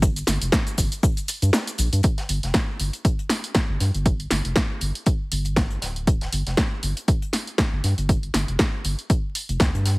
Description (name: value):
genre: deep house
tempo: 119 BPM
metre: 4/4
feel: swing 56% on 16ths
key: G minor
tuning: A4 = 440 Hz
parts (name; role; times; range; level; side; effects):
- round analog bass; bass; 0.0-10.0 s; D1 to G2; -23 LUFS; equal; sidechain pumping
- deep reggae drum kit; drums; 0.0-10.0 s; hi-hat, snare drum; -36 LUFS; left 2 dB; sidechain pumping on hats, high-pass filter on hats, high-pass filter on snare, high-pass filter on room
- electronic kick drum; drums; 0.0-9.7 s; none; -21 LUFS; equal; none
- punchy analog drum machine; drums; 0.0-10.0 s; hi-hat, shaker, snare drum; -25 LUFS; equal; none
room: studio reverb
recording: heavily compressed radio sound, vinyl crackle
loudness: -20 LUFS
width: side -26 dB against mid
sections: 0.0-2.0 A section; 2.0-10.0 B section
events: drop 0.0-2.0; kick drops out 1.5-2.0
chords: none